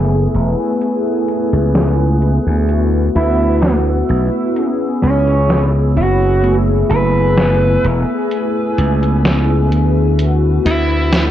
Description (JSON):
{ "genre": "vaporwave", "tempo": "64 BPM", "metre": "4/4", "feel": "straight", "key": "F# minor", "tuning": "A4 = 442 Hz", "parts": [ { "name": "mellow synth brass", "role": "accompaniment", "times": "0.0-11.3 s", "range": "A3 to G#4", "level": "-18 LUFS", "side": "equal", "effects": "wide subtle chorus, tape echo" }, { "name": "warbly tape-like pad", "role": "sustained chords", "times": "0.0-11.3 s", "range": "B4 to F#6", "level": "-25 LUFS", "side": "left 2 dB", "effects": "chorus, built-in reverb, phaser" }, { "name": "slap bass", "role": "bass", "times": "0.0-11.3 s", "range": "E1 to D2", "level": "-14 LUFS", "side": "equal", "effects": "none" }, { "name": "detuned 8-bit digital drum machine", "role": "drums", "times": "0.3-11.3 s", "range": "hi-hat, snare drum", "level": "-18 LUFS", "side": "equal", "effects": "none" }, { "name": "dark smooth lead guitar", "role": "melody", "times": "3.2-11.2 s", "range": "C#4 to B4", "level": "-20 LUFS", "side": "right 1 dB", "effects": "overdrive, vintage 12-bit sampler grit, tape echo" } ], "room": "digital ambience", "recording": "dry, gritty hardware recording, cassette tape, low-pass filter", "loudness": "-12 LUFS", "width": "side -11 dB against mid", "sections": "0.0-11.3 A section", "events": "filter sweep on drum 0.0-11.3; filter sweep 0.0-11.3", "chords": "0.0 F#m11; 2.7 D69; 4.6 C#m7; 6.4 F#m11; 10.2 D69", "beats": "0.81 1.75 | 2.69 3.63 4.57 5.50 | 6.44 7.38 8.31 9.25 | 10.19 11.13" }